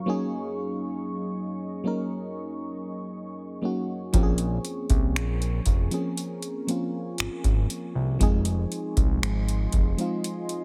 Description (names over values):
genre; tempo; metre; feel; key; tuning
contemporary R&B; 59 BPM; 4/4; straight; Bb minor; A4 = 440 Hz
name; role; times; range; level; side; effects
mellow FM electric piano; accompaniment; 0.0-10.6 s; F3 to Bb4; -32 LUFS; equal; chorus
deep dark ambient pad; sustained chords; 0.0-10.6 s; Gb3 to Db6; -43 LUFS; equal; chorus, built-in reverb
fat analog bass; bass; 4.1-10.0 s; F1 to C2; -29 LUFS; equal; none
booming analog drum machine; drums; 4.1-10.6 s; finger snaps, hi-hat, kick drum; -27 LUFS; equal; none
room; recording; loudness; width
little or no reverb; none; -27 LUFS; mono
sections
0.0-10.6 A section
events
none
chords
0.1 Ab7sus4; 4.1 Bbm7; 8.2 Fm7